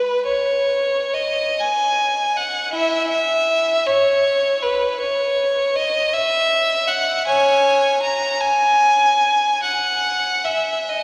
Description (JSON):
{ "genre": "classical, free, expressive piece for unaccompanied violin", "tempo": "42-55 BPM (dotted quarters)", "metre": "6/8", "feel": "rubato", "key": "C# dorian", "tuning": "A4 = 440 Hz", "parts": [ { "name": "bright violin", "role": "solo", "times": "0.0-11.0 s", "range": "E4 to A#5", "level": "-18 LUFS", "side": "equal", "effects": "none" } ], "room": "wet cathedral reverb, RT60 5.2 s", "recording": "vinyl crackle", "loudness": "-19 LUFS", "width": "mono", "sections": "0.0-11.0 A section", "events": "none", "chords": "none" }